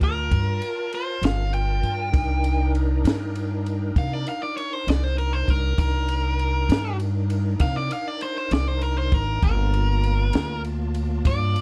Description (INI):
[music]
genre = slow blues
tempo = 66 BPM (dotted quarters)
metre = 12/8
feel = straight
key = unclear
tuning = A4 = 445 Hz
[part]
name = overdriven electric guitar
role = melody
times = 0.0-11.6 s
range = Bb4 to G5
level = -30 LUFS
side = equal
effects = none
[part]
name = bright tonewheel organ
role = sustained chords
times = 0.0-11.6 s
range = Bb3 to A5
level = -34 LUFS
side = equal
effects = slow rotary speaker, overdrive, chorus vibrato
[part]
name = upright bass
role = bass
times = 0.0-11.5 s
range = G1 to C3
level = -25 LUFS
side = equal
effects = none
[part]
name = compact cocktail drum kit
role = drums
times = 0.0-11.6 s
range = kick drum, ride cymbal, snare drum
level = -27 LUFS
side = equal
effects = none
[sound]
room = little or no reverb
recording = dark, warm production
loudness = -23 LUFS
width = mono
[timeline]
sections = 0.0-11.6 A section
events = overdriven electric guitar solo 0.0-11.6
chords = 0.0 Gm9; 2.1 Cm9; 9.4 Gm9